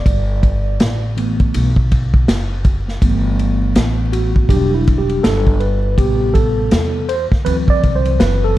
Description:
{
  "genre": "hip hop, jazz-hop",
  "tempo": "81 BPM",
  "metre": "4/4",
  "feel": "swing 61% on 16ths",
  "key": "G major",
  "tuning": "A4 = 441 Hz",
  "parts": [
    { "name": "mellow tine electric piano", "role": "accompaniment", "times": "0.0-8.6 s", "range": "C3 to D5", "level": "-19 LUFS", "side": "right 1 dB", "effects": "medium stereo tremolo" },
    { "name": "upright bass", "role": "bass", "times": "0.1-8.6 s", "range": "E1 to E2", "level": "-18 LUFS", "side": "equal", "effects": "none" },
    { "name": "vintage drum kit", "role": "drums", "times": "0.1-8.4 s", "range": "hi-hat, kick drum, ride cymbal, snare drum", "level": "-16 LUFS", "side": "equal", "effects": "none" }
  ],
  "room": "small room ambience",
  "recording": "dark, warm production, vinyl crackle",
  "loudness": "-13 LUFS",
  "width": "side -15 dB against mid",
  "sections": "0.0-3.0 A section; 3.0-8.6 B section",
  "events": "tine electric piano solo 0.0-3.0, 3.0-8.6",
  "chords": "0.0 G69; 4.5 Em7; 6.0 Am7; 7.5 D7"
}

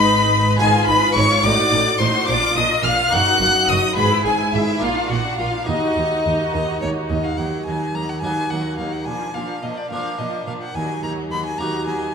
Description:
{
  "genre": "classical, baroque-style concerto movement with solo episodes",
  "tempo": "71 BPM (dotted quarters)",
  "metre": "6/8",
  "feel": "straight",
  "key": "Eb minor",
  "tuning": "A4 = 445 Hz",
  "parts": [
    { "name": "rich chamber violin section", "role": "melody", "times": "0.0-12.1 s", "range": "Bb4 to Gb6", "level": "-24 LUFS", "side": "left 4 dB", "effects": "none" },
    { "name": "warm violin", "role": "melody", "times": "0.0-12.1 s", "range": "Db5 to Gb6", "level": "-22 LUFS", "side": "left 2 dB", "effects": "none" },
    { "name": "rich chamber violin section", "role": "second line", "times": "0.0-12.1 s", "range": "D4 to Gb5", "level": "-25 LUFS", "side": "left 2 dB", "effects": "none" },
    { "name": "harpsichord", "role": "accompaniment", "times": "0.0-12.1 s", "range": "Eb2 to G#4", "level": "-26 LUFS", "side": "right 1 dB", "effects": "none" },
    { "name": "rich chamber viola section", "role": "accompaniment", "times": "0.0-12.1 s", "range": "F3 to G#4", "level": "-26 LUFS", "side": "right 2 dB", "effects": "none" },
    { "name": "warm chamber cello section", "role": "bass", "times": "0.0-11.9 s", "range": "Eb2 to Bb2", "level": "-27 LUFS", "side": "right 2 dB", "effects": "none" },
    { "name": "warm symphonic double bass section", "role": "bass", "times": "0.0-7.2 s", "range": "Gb1 to Eb2", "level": "-26 LUFS", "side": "right 3 dB", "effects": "none" }
  ],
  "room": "wet recital hall reverb, RT60 1.6 s",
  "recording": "minimal, uncompressed stereo recording",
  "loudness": "-17 LUFS",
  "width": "side -6 dB against mid",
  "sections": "0.0-7.4 A section; 7.4-12.1 B section",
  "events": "none",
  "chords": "0.0 G#m; 0.6 Fm7b5/Ab; 1.4 Adim7; 2.3 Bb; 3.1 Ebm/Gb; 4.0 E/G#; 4.8 Bb; 5.7 Ebm; 9.1 Bb; 10.8 Ebm"
}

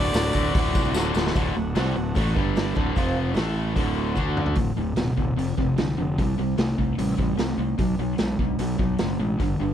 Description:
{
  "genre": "classic rock",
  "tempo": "149 BPM",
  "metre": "4/4",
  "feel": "straight",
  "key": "D mixolydian",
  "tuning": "A4 = 440 Hz",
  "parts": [
    { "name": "clear harmonica", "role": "melody", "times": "0.0-0.9 s", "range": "D5", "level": "-29 LUFS", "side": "equal", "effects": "tape echo" },
    { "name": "picked swing-style acoustic guitar", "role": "accompaniment", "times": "0.0-4.6 s", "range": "D3 to E5", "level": "-33 LUFS", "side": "right 3 dB", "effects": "none" },
    { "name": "distorted electric guitar", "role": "riff", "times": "0.0-9.7 s", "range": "D2 to F#4", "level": "-28 LUFS", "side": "left 10 dB", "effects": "distortion" },
    { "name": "distorted electric guitar", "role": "riff", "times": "0.0-9.7 s", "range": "D2 to F#4", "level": "-29 LUFS", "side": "right 12 dB", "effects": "distortion" },
    { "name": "fuzz fingered electric bass", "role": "bass", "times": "0.0-9.7 s", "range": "D1 to D2", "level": "-27 LUFS", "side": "equal", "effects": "overdrive" },
    { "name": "tambourine", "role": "percussion", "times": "0.0-1.3 s", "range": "none", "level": "-40 LUFS", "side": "left 6 dB", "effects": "none" },
    { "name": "vintage drum kit", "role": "drums", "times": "0.1-9.5 s", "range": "hi-hat, kick drum, snare drum, toms", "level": "-26 LUFS", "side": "equal", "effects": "none" }
  ],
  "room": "little or no reverb",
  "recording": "none",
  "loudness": "-21 LUFS",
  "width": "side -10 dB against mid",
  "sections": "0.0-1.3 A section; 1.3-4.6 B section; 4.6-9.7 C section",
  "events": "drum fill 0.9-1.3, 4.2-4.6",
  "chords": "0.0 D; 2.4 G5; 2.8 D; 3.0 F5; 3.4 A5; 3.8 D; 4.6 D5; 5.4 F5; 6.2 C5; 7.8 B5"
}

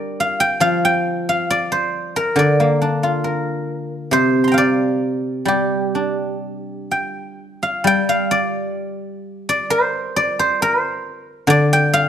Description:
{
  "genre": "chinese traditional, Chinese solo plucked strings",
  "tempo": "66 BPM",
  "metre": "4/4",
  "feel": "uneven beats, rubato",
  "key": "G yu mode",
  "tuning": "A4 = 440 Hz",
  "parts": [
    { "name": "guzheng", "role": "solo", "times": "0.0-12.1 s", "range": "C3 to C6", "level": "-16 LUFS", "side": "equal", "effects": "none" }
  ],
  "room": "light reverb",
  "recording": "close, detailed microphones",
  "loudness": "-16 LUFS",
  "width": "side -9 dB against mid",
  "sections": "0.0-7.9 A section; 7.9-12.1 B section",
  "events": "none",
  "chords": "none"
}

